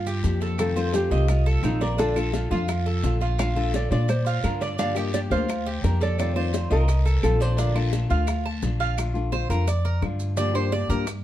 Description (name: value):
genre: latin, Cuban son and guajira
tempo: 172 BPM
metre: 4/4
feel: straight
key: Bb major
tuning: A4 = 440 Hz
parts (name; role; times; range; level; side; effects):
- nylon-string guitar; melody; 0.0-8.8 s; Eb4 to F5; -28 LUFS; right 1 dB; none
- Cuban tres; arpeggios; 0.0-11.1 s; D4 to A5; -31 LUFS; right 5 dB; none
- upright bass; bass; 0.0-11.2 s; Bb1 to Bb2; -24 LUFS; equal; none
- bongos; percussion; 0.1-11.2 s; none; -35 LUFS; left 8 dB; none
- maracas; percussion; 0.1-11.2 s; none; -43 LUFS; right 6 dB; none
- nylon-string guitar; accompaniment; 0.2-11.1 s; C3 to G4; -30 LUFS; left 4 dB; none
- guiro; percussion; 0.2-9.0 s; none; -42 LUFS; left 4 dB; none
- claves; percussion; 0.6-11.2 s; none; -41 LUFS; right 4 dB; none
room: light reverb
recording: dark, warm production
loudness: -21 LUFS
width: side -12 dB against mid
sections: 0.0-9.0 A section; 9.0-11.2 B section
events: Cuban tres solo 9.0-11.2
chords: 0.0 Gm7; 0.6 F7; 2.0 Bbmaj7; 4.8 Gm7; 6.2 F7; 7.6 Bbmaj7; 10.4 Gm7